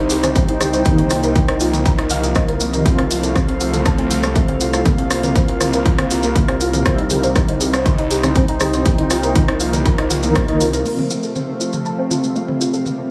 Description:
melodic techno; 120 BPM; 4/4; straight; C dorian; A4 = 441 Hz
lush unison pad; sustained chords; 0.0-13.1 s; C3 to F4; -27 LUFS; equal; chorus, sidechain pumping
woody wave-folded pluck; arpeggios; 0.0-13.0 s; A3 to C6; -26 LUFS; equal; ensemble chorus, sidechain pumping, digital delay
swelling detuned saw bass; bass; 0.0-10.8 s; C2; -24 LUFS; equal; sidechain pumping
warbly tape-like pad; texture; 0.0-13.1 s; C4 to G5; -26 LUFS; equal; chorus, built-in reverb, phaser, sidechain pumping
house drum kit; drums; 0.1-13.0 s; crash cymbal, hi-hat, rim click, toms; -26 LUFS; equal; overdrive
maracas; percussion; 0.1-13.0 s; -29 LUFS; equal
electronic kick drum; drums; 0.4-10.5 s; -20 LUFS; equal; overdrive
brassy analog pad; stabs; 0.7-12.8 s; Bb2 to F4; -25 LUFS; equal; chorus, tremolo, sidechain pumping, digital delay
bowed-like drone; drone; 12.3-13.1 s; C3 to G3; -36 LUFS; equal
light reverb; -17 LUFS; mono
0.0-10.9 A section; 10.9-13.1 B section
band accent 10.4; filter sweep on synth pluck 10.9-13.1
0.0 Cm; 2.9 F/C; 4.9 Bbsus2/C; 6.9 Cm; 10.9 F/C

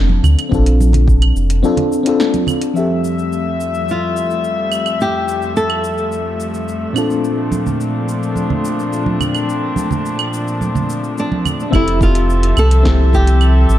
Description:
sunset chillout; 107 BPM; 4/4; straight; F major; A4 = 439 Hz
mellow FM electric piano; accompaniment; 0.0-13.8 s; Bb2 to E5; -20 LUFS; left 2 dB; chorus, auto-pan, tape echo
warm sub bass; bass; 0.0-1.6, 11.7-13.8 s; F1 to D2; -12 LUFS; equal
congas; percussion; 0.1-2.6, 7.5-11.6 s; -22 LUFS; right 4 dB
deep house drum kit; drums; 0.2-13.8 s; claves, hi-hat, shaker, snare drum; -24 LUFS; right 2 dB; overdrive
electronic kick drum; drums; 0.5-1.2, 11.7-13.2 s; -17 LUFS; equal; overdrive
dark studio string section; sustained chords; 2.8-13.8 s; F2 to E5; -20 LUFS; left 2 dB
flamenco guitar; melody; 3.9-6.9, 11.2-13.8 s; D4 to A4; -20 LUFS; equal; tape echo
light reverb, digital ambience; dark, warm production; -13 LUFS; side -12 dB against mid
0.0-2.8 A section; 2.8-11.7 B section; 11.7-13.8 C section
break 1.6-2.8
0.0 Bbmaj9; 2.8 Fmaj9; 7.0 Bbmaj9; 11.7 Fmaj9

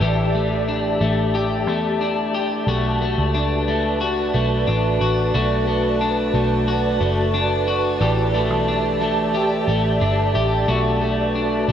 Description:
dream pop; 90 BPM; 4/4; straight; B minor; A4 = 440 Hz
ethereal airy pad; sustained chords; 0.0-11.7 s; F#4 to A5; -22 LUFS; right 1 dB; ensemble chorus, built-in reverb
electric guitar at the edge of break-up; arpeggios; 0.0-11.7 s; E3 to G4; -22 LUFS; left 2 dB; lush chorus, digital delay
vintage muted picked electric bass; bass; 0.0-11.7 s; F#1 to E2; -23 LUFS; equal
moderate huge ambient reverb, RT60 7.0 s; -18 LUFS; side -9 dB against mid
0.0-11.7 A section
0.0 A7sus4; 2.7 Bm7; 8.0 A7sus4; 10.7 Bm7

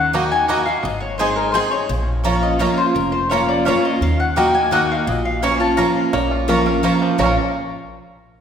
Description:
bluegrass; 170 BPM; 3/4; straight; Bb minor; A4 = 440 Hz
mandolin; melody; 0.0-7.4 s; Bb4 to Bb5; -20 LUFS; left 3 dB
picked steel-string acoustic guitar; accompaniment; 0.0-7.3 s; F2 to Ab4; -20 LUFS; equal
upright bass; bass; 0.0-7.4 s; F1 to Eb2; -25 LUFS; equal
bluegrass banjo; melody; 0.1-7.4 s; F3 to Bb4; -27 LUFS; right 3 dB
mandolin; stabs; 0.1-7.3 s; Bb3 to Bb5; -23 LUFS; right 3 dB
lap resonator guitar; second line; 6.1-7.4 s; Bb4 to Db5; -25 LUFS; left 2 dB
wet scoring stage reverb, RT60 1.6 s; recorded in a church or concert hall; -15 LUFS; side -8 dB against mid
0.0-6.1 A section; 6.1-7.2 B section; 7.2-8.3 C section
0.0 Ebm; 0.8 Ab; 1.9 Bbm; 4.0 Ebm; 5.1 Bbm

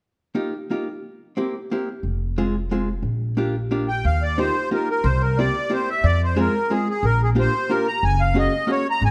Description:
musette waltz; 180 BPM; 3/4; straight; Eb major; A4 = 438 Hz
archtop guitar, miked and amplified; accompaniment; 0.3-8.9 s; Ab3 to Ab4; -27 LUFS; equal
upright bass; bass; 2.0-9.1 s; F1 to F2; -24 LUFS; equal
accordion; melody; 3.9-9.1 s; Ab4 to Bb5; -24 LUFS; equal; light tremolo tuning
moderate recital hall reverb, RT60 1.4 s; -22 LUFS; mono
0.0-4.0 A section; 4.0-9.1 B section
0.0 Ebadd9; 1.0 C7; 2.0 Fm; 3.0 Bb6; 4.0 Ebadd9; 5.1 C7; 6.0 Fm; 7.0 Bb6; 8.0 Gbadd9

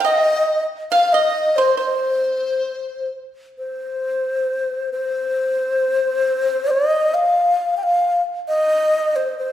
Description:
chinese traditional, Chinese chamber ensemble; 68 BPM; 2/4; uneven beats, rubato; C yu mode; A4 = 440 Hz
breathy bright low xiao; melody; 0.0-9.5 s; C5 to G5; -18 LUFS; left 1 dB
mellow hollow large dizi; second line; 0.0-3.1 s; C5 to F5; -22 LUFS; left 2 dB
pipa; second line; 0.0-3.1 s; C5 to F5; -22 LUFS; right 5 dB
wet recital hall reverb, RT60 1.4 s; heard from further back in the room; -17 LUFS; side -11 dB against mid
0.0-3.6 A section; 3.6-9.5 B section

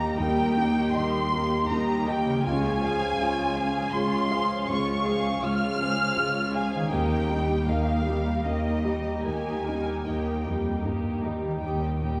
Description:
cinematic, emotional film score for orchestra; 79 BPM; 3/4; rubato; A4 = 440 Hz
muted studio violin section; melody; 0.0-10.8 s; Eb5 to F6; -32 LUFS; equal
muted studio violin section; second line; 0.0-12.2 s; Eb4 to G5; -36 LUFS; equal
felt-muted upright piano; accompaniment; 0.0-12.2 s; Db2 to F5; -32 LUFS; equal
muted studio viola section; accompaniment; 0.0-12.2 s; F3 to Bb4; -34 LUFS; equal
concert harp; arpeggios; 0.0-12.2 s; Db3 to F5; -38 LUFS; equal
muted studio cello section; bass; 0.0-12.2 s; Db2 to G2; -33 LUFS; equal
muted studio double bass section; bass; 11.6-12.2 s; Eb2; -35 LUFS; equal
wet scoring stage reverb, RT60 1.8 s; heard from further back in the room; -26 LUFS; mono
0.0-11.6 A section
0.0 Eb; 2.4 Db; 6.9 Eb

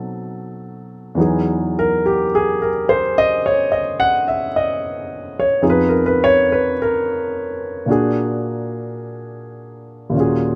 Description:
jazz ballad; 54 BPM; 4/4; swing 68% on 8ths; A4 = 440 Hz
warm grand piano; solo; 0.0-10.6 s; Eb2 to F#5; -19 LUFS; equal
light reverb; -18 LUFS; mono
0.0-10.6 A section
0.0 B7b9; 1.2 Emaj9; 5.6 Fm7b5; 7.9 Bb7b13

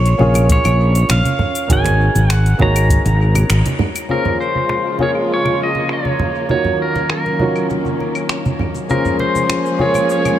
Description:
sunset chillout; 100 BPM; 4/4; straight; Bb minor; A4 = 441 Hz
pedal steel guitar; melody; 0.0-10.4 s; Bb4 to Bb5; -20 LUFS; right 1 dB; dub echo
warm grand piano; accompaniment; 0.0-10.4 s; Bb3 to Db5; -20 LUFS; moving between left 6 dB and right 6 dB; auto-pan, dub echo
fretless electric bass; bass; 0.0-3.6 s; Ab1 to Bb1; -13 LUFS; equal
deep house drum kit; drums; 0.1-10.4 s; cabasa, claves, finger snaps, hi-hat; -25 LUFS; left 1 dB; overdrive, low-pass filter on hats, studio reverb, low-pass filter on perc, low-pass filter on snare, dub echo
congas; percussion; 0.2-10.4 s; -22 LUFS; right 2 dB
electronic kick drum; drums; 0.5-3.0 s; -16 LUFS; equal; overdrive, studio reverb
muted studio string section; sustained chords; 4.1-10.4 s; Db3 to Ab4; -21 LUFS; left 1 dB
moderate plate reverb, RT60 2.7 s; echo-heavy mix; -13 LUFS; side -11 dB against mid
0.0-4.1 A section; 4.1-10.4 B section
band accent 3.5
0.0 Bbm7; 1.7 Ab9sus4; 4.1 Bbm7; 6.5 Ebm7; 8.9 Bbm7

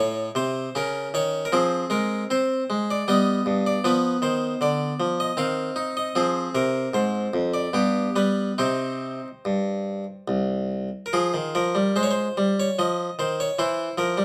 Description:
classical, baroque-style suite movement for harpsichord; 69-79 BPM; 3/4; rubato; C minor, F minor from 11.1 s; A4 = 441 Hz
harpsichord; solo; 0.0-14.2 s; C2 to F5; -24 LUFS; equal
moderate studio reverb, RT60 0.7 s; -24 LUFS; mono
0.0-11.1 A section; 11.1-14.2 A section
0.0 Adim; 0.8 Bbm/Db; 1.5 Fm; 3.1 G; 3.9 Dm6; 5.4 Cm/Eb; 6.2 Fmadd11; 7.7 G; 8.6 Cm; 11.1 Fm; 13.6 E(b5, no3)

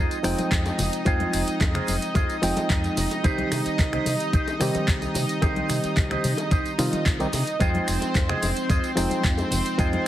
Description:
nu-disco, nu disco; 110 BPM; 4/4; straight; F minor; A4 = 440 Hz
barky reed electric piano; accompaniment; 0.0-10.1 s; Eb3 to G5; -27 LUFS; equal; sidechain pumping, dub echo
lush unison pad; sustained chords; 0.0-10.1 s; C4 to Eb5; -30 LUFS; right 1 dB; chorus, vintage 12-bit sampler grit, sidechain pumping
electric guitar with an envelope filter; riff; 0.0-10.1 s; Eb4 to Eb5; -31 LUFS; right 1 dB; wide subtle chorus, dub echo
fingered electric bass with an envelope filter; bass; 0.0-10.0 s; F1 to C3; -28 LUFS; equal
pop drum kit; drums; 0.1-10.0 s; finger snaps, handclaps, hi-hat, tambourine; -30 LUFS; equal; overdrive
cabasa, bongos and congas; percussion; 0.1-10.0 s; -34 LUFS; left 3 dB
electronic kick drum; drums; 0.5-9.9 s; -24 LUFS; equal
light reverb; heavily compressed radio sound, multiband compression; -21 LUFS; side -12 dB against mid
0.0-10.1 A section
0.0 Fm7; 3.2 Cm; 7.6 Fm7

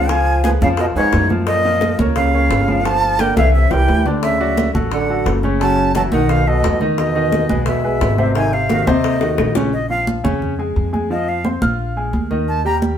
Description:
Afro-Cuban jazz; 174 BPM; 4/4; straight; Bb minor from 9.7 s; A4 = 440 Hz
breathy bright jazz flute; melody; 0.0-12.8 s; Db5 to Bb5; -20 LUFS; right 1 dB
breathy trombone; second line; 0.0-9.6 s; Ab2 to Gb3; -22 LUFS; right 3 dB
warm grand piano; accompaniment; 0.0-12.9 s; C3 to F6; -20 LUFS; left 1 dB
upright bass; bass; 0.0-12.9 s; F#1 to Gb2; -20 LUFS; equal
bongos; percussion; 0.1-9.6 s; -25 LUFS; left 4 dB
congas; percussion; 0.1-13.0 s; -23 LUFS; right 2 dB
moderate studio reverb, RT60 0.7 s; band playing live in one room; -14 LUFS; side -9 dB against mid
0.0-9.7 A section; 9.7-13.0 B section
drum fill 3.2-4.2, 9.2-9.7; flute solo 9.7-13.0
0.1 Db7; 1.5 Gbmaj7; 2.9 Gm7; 3.5 C9; 4.2 Dmaj7; 5.6 Gbm7; 6.3 Cb7; 7.0 Emaj7; 8.4 Ab7; 9.7 Bbm7; 11.1 F5; 11.8 Bb5; 12.5 Eb

